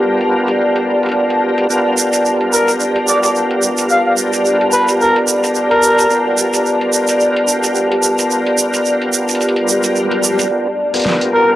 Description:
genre	glitch hop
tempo	109 BPM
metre	4/4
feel	swing 57% on 16ths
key	unclear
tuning	A4 = 440 Hz
part	overdriven tonewheel organ	stabs	0.0-11.6 s	B3 to A#4	-17 LUFS	equal	chorus vibrato, slow rotary speaker, low-pass filter, cassette tape, analog delay
part	granular cloud pad	texture	0.0-11.6 s	G4 to A5	-16 LUFS	equal	built-in reverb, cassette tape
part	pop drum kit	drums	0.2-11.3 s	hi-hat, rim click, snare drum	-23 LUFS	equal	low-pass filter on hats, cassette tape, low-pass filter on snare
part	egg shaker	percussion	1.7-10.5 s	none	-19 LUFS	right 5 dB	none
part	growling trumpet	melody	2.5-6.3, 11.3-11.5 s	A#4 to F5	-15 LUFS	equal	vintage 12-bit sampler grit, cassette tape, analog delay
part	swell and riser	sound effects	9.6-11.6 s	none	-24 LUFS	left 2 dB	none
room	moderate spring reverb, RT60 1.9 s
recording	home recording on cassette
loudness	-12 LUFS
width	side -14 dB against mid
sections	0.0-10.5 A section; 10.5-11.6 B section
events	swell 9.6-10.5; build-up 10.5-11.6; filter sweep 10.5-11.6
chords	0.0 G7#9

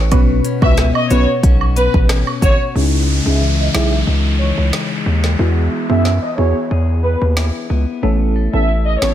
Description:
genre	dancehall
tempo	91 BPM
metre	4/4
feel	straight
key	C# minor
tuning	A4 = 440 Hz
part	clean electric guitar	arpeggios	0.0-9.1 s	B2 to C#5	-22 LUFS	left 6 dB	spring reverb, low-pass filter
part	hard-hitting 808-style bass	bass	0.0-9.1 s	G#1 to F#2	-16 LUFS	equal	none
part	deep mellow chord stab	accompaniment	0.1-9.1 s	B3 to B4	-20 LUFS	right 2 dB	chorus, phaser, low-pass filter
part	afro-pop drum kit	drums	0.1-9.1 s	hi-hat, kick drum, rim click, snare drum	-17 LUFS	equal	none
part	woodblock and cabasa	percussion	0.1-2.6 s	none	-26 LUFS	right 6 dB	none
part	dark studio violin section	melody	0.6-9.1 s	B4 to E5	-21 LUFS	equal	low-pass filter, digital delay
part	downlifter	sound effects	2.8-8.0 s	none	-25 LUFS	equal	none
room	little or no reverb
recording	none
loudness	-13 LUFS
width	side -11 dB against mid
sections	0.0-2.8 A section; 2.8-9.1 B section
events	filter sweep 2.8-9.1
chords	0.1 Bsus2; 2.8 C#madd9; 5.4 Eadd9; 8.0 Aadd9

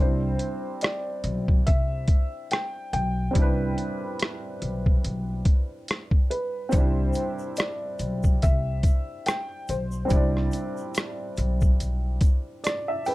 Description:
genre	lo-fi hip hop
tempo	71 BPM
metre	4/4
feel	swing 55% on 16ths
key	C major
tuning	A4 = 440 Hz
part	felt-muted upright piano	melody	0.0-13.1 s	B4 to G5	-32 LUFS	left 1 dB	low-pass filter, tape echo
part	warm upright piano	accompaniment	0.0-13.1 s	G3 to G5	-31 LUFS	right 1 dB	cassette tape, low-pass filter
part	upright bass	bass	0.0-12.2 s	B1 to C2	-27 LUFS	equal	none
part	boom bap sampler-style drum kit	drums	0.4-13.1 s	hi-hat, kick drum, rim click	-22 LUFS	equal	none
part	egg shaker	percussion	6.7-13.1 s	none	-49 LUFS	left 7 dB	none
room	light reverb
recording	dark, warm production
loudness	-23 LUFS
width	side -18 dB against mid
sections	0.0-13.1 A section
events	upright piano fill 12.2-13.1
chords	0.0 Cmaj9

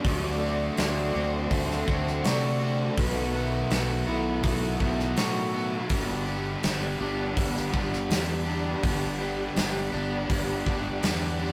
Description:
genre	rock, shoegaze and dream pop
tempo	82 BPM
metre	4/4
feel	straight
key	G major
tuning	A4 = 440 Hz
part	soft string machine	sustained chords	0.0-11.5 s	G4 to C6	-40 LUFS	equal	ensemble chorus
part	electric guitar through a small old amp	arpeggios	0.0-11.5 s	F#3 to F#4	-38 LUFS	equal	none
part	crunchy overdriven guitar	riff	0.0-11.5 s	G2 to G4	-35 LUFS	equal	none
part	thick fuzz guitar	riff	0.0-11.5 s	G2 to D4	-35 LUFS	equal	distortion
part	growling fingered electric bass	bass	0.0-11.5 s	G1 to C3	-35 LUFS	equal	overdrive
part	gated 80s drum kit	drums	0.0-11.2 s	hi-hat, kick drum, snare drum	-32 LUFS	equal	none
part	warm velvety synth lead	melody	0.1-4.4 s	B4 to D5	-36 LUFS	equal	chorus
room	wet studio reverb, RT60 0.6 s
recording	rough rehearsal-room recording, warm saturation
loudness	-27 LUFS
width	mono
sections	0.0-11.5 A section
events	none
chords	0.0 D7; 3.0 B7sus4; 5.9 Gmaj7

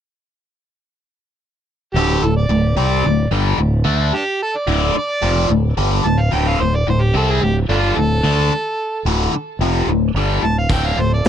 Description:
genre	blues rock power trio and southern rock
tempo	110 BPM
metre	4/4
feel	straight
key	D minor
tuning	A4 = 437 Hz
part	overdriven harmonica	melody	1.9-11.3 s	A3 to A5	-21 LUFS	right 2 dB	none
part	growling fingered electric bass	bass	1.9-11.3 s	D1 to D2	-18 LUFS	equal	overdrive
part	biting overdriven guitar	riff	2.0-11.3 s	D2 to D4	-18 LUFS	left 1 dB	phaser
part	overdriven tonewheel organ	sustained chords	10.7-11.3 s	F3 to A4	-30 LUFS	right 9 dB	slow rotary speaker, chorus vibrato
part	vintage drum kit	drums	10.7-11.3 s	hi-hat, kick drum, snare drum	-17 LUFS	equal	none
room	little or no reverb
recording	dry, close 1970s-style studio recording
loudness	-15 LUFS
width	side -9 dB against mid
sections	1.9-11.3 A section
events	none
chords	1.9 Dm

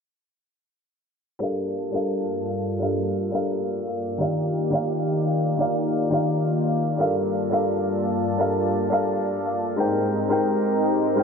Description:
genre	drum and bass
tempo	172 BPM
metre	4/4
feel	straight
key	G minor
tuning	A4 = 440 Hz
part	felt-muted upright piano	accompaniment	1.4-11.2 s	Eb3 to G5	-23 LUFS	equal	low-pass filter, ping-pong delay
part	lush unison pad	sustained chords	1.4-11.2 s	G2 to A5	-26 LUFS	equal	chorus
room	moderate lush hall reverb, RT60 2.6 s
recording	low-pass filter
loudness	-21 LUFS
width	side -6 dB against mid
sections	1.4-11.2 A section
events	filter sweep on felt piano 1.4-11.2; filter sweep on analog synth pad 1.4-11.2; filter sweep 1.4-11.2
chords	1.4 Gm9; 4.2 Ebmaj9; 7.0 Gm9; 9.8 Abmaj9

